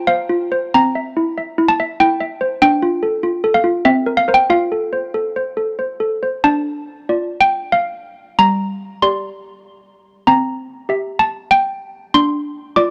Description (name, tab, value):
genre	classical, lullaby for handbells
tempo	95 BPM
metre	3/4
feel	rubato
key	unclear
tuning	A4 = 440 Hz
part	malleted handbells	solo	0.0-12.9 s	G3 to D6	-17 LUFS	equal	none
room	light reverb, small room ambience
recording	dry, close 1970s-style studio recording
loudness	-17 LUFS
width	mono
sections	0.0-6.5 A section; 6.5-12.9 B section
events	none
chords	0.0 F5; 0.7 C7; 2.6 Dm; 3.9 C7; 4.5 F; 6.5 Dm; 8.4 Gm; 10.3 C7; 12.1 Dm